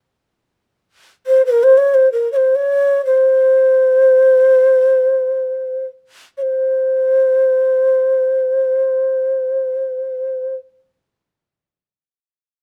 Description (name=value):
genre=japanese traditional, Japanese chamber music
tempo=free time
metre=none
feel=none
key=unclear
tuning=A4 = 439 Hz
part: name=breathy mellow shakuhachi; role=solo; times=1.3-10.6 s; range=Bb4 to Db5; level=-14 LUFS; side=equal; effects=none
room=light reverb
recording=none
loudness=-15 LUFS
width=mono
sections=0.0-6.4 A section; 6.4-11.2 B section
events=slowing down 0.0-6.4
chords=none